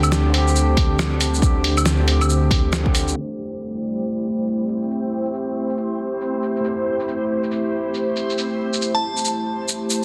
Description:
future garage; 138 BPM; 4/4; swing 62% on 16ths; A minor; A4 = 442 Hz
overdriven tine electric piano; accompaniment; 0.0-10.0 s; D3 to C5; -29 LUFS; equal; sidechain pumping, dub echo
warbly tape-like pad; sustained chords; 0.0-10.0 s; A3 to C5; -27 LUFS; equal; chorus, built-in reverb, sidechain pumping
dark detuned saw bass; bass; 0.0-3.1 s; D2; -22 LUFS; equal; tube saturation, sidechain pumping
lo-fi sampler-style drum kit; drums; 0.0-10.0 s; claves, hi-hat, shaker, snare drum; -26 LUFS; equal
backwards swelling texture; texture; 0.0-10.0 s; G3 to C5; -35 LUFS; equal; built-in reverb
electronic kick drum; drums; 0.8-2.9 s; -21 LUFS; equal; overdrive
glassy synth bell; melody; 8.9-9.2 s; A5; -26 LUFS; equal; chorus, dub echo
light reverb; dense, heavily limited modern master, low-pass filter, faint mains hum; -21 LUFS; mono
0.0-3.2 A section; 3.2-10.0 B section
filter sweep 3.2-10.0
0.0 D7sus4; 3.2 Am7

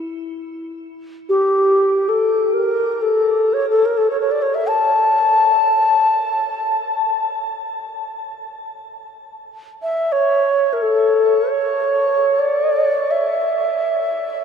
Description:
world meditative, free-time meditation music; free time; A4 = 440 Hz
crotales; texture; 0.0-4.4 s; C#7 to G7; -55 LUFS; right 1 dB; shimmer reverb
xiao; melody; 1.3-14.4 s; G4 to A5; -16 LUFS; left 1 dB; shimmer reverb, diffuse ambient delay
wet huge ambient reverb, RT60 8.9 s; dreamy mix soaked in reverb; -15 LUFS; side -7 dB against mid
0.0-14.4 A section

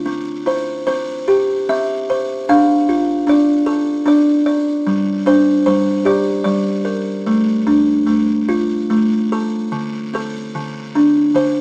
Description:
children's music, lullaby; 75 BPM; 3/4; rubato; D minor; A4 = 439 Hz
buzzing kalimba; solo; 0.0-11.6 s; D3 to F5; -16 LUFS; equal
moderate studio reverb, RT60 0.7 s; vinyl crackle; -16 LUFS; mono
0.1-9.7 A section; 9.7-11.6 B section
0.1 C; 2.5 Dm; 4.9 Gm; 7.3 Dm/A; 8.9 N.C.; 9.7 D7(no3)

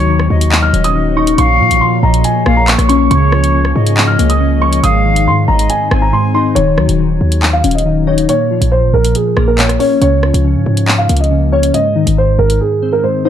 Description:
hip hop, drill; 139 BPM; 4/4; half-time; A4 = 440 Hz
dark concert grand piano; melody; 0.0-13.3 s; Ab4 to F6; -16 LUFS; right 1 dB; tape echo
silver concert flute; second line; 0.0-6.5 s; Db5 to Ab5; -19 LUFS; left 3 dB; tape echo
glassy digital keys; accompaniment; 0.0-13.3 s; Ab2 to Eb4; -15 LUFS; left 2 dB; chorus
glassy FM pad; sustained chords; 0.0-6.5 s; Eb3 to Db5; -22 LUFS; left 1 dB; ensemble chorus, built-in reverb
hard-hitting 808-style bass; bass; 0.0-12.6 s; Eb1 to Bb2; -14 LUFS; equal
drill drum kit; drums; 0.2-12.6 s; handclaps, hi-hat, rim click; -17 LUFS; equal
little or no reverb; dark, warm production; -9 LUFS; side -9 dB against mid
0.0-6.6 A section; 6.6-13.3 B section
drums muted 6.1-6.6; break 12.6-13.3
0.0 Ebm7; 1.4 Bbm7; 3.1 Db6; 4.8 Ab; 6.6 Ebm7; 8.3 Bbm; 10.0 Db6; 11.7 Ab

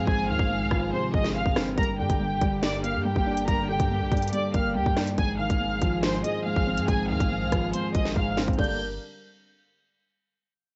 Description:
hip hop, drill; 141 BPM; 4/4; half-time; G phrygian; A4 = 440 Hz
warm symphonic violin section; melody; 0.0-8.8 s; G4 to G6; -32 LUFS; equal; low-pass filter, cassette tape, plate reverb
dark concert grand piano; accompaniment; 0.0-8.8 s; G2 to D4; -31 LUFS; equal; low-pass filter, cassette tape
dark studio string section; sustained chords; 0.0-8.8 s; D3 to Bb4; -37 LUFS; equal; cassette tape, plate reverb
long sustained 808-style bass; bass; 0.0-9.0 s; F1 to Ab2; -36 LUFS; equal
drill drum kit; drums; 0.1-8.7 s; crash cymbal, hi-hat, kick drum, rim click, snare drum; -30 LUFS; equal; cassette tape
light reverb; home recording on cassette, nothing above 7.9 kHz; -26 LUFS; mono
0.0-8.6 A section; 8.6-10.3 B section
break 0.1-1.8; drum fill 8.2-8.6
0.0 Ab6; 1.8 Gm; 5.2 Ab6; 8.6 Gm

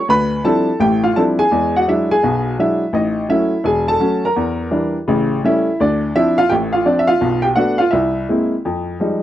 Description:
solo jazz; 168 BPM; 4/4; swing 63% on 8ths; A4 = 441 Hz
clear upright piano; solo; 0.0-9.2 s; E1 to B5; -14 LUFS; equal
small room ambience; dry, close 1970s-style studio recording; -14 LUFS; side -12 dB against mid
0.0-8.6 A section
0.1 Dm11; 1.5 E9; 2.9 A6; 4.4 Em7b5; 5.1 A7; 5.8 Dm7; 7.2 Bm7b5; 7.9 C7b13; 8.6 Fm9

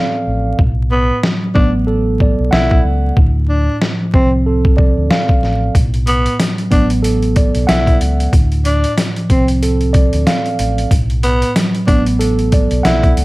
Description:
hip hop, boom-bap hip-hop; 93 BPM; 4/4; swing 58% on 16ths; B minor; A4 = 440 Hz
mellow tine electric piano; accompaniment; 0.0-13.2 s; A2 to F#5; -17 LUFS; right 1 dB; cassette tape, high-pass filter, low-pass filter
fingered electric bass; bass; 0.3-13.2 s; A1 to D2; -16 LUFS; equal
trip hop sampler-style drum kit; drums; 0.6-13.2 s; hi-hat, kick drum, snare drum; -14 LUFS; equal
growling tenor saxophone; melody; 0.9-13.1 s; B3 to E4; -19 LUFS; equal; high-pass filter, low-pass filter, tape echo
digital ambience; vinyl crackle; -11 LUFS; side -20 dB against mid
0.0-13.2 A section
break 0.0-5.7
0.0 Dm7; 0.6 Bm7; 3.2 Dm7; 5.7 Bm7; 8.3 Dm7; 10.9 Bm7

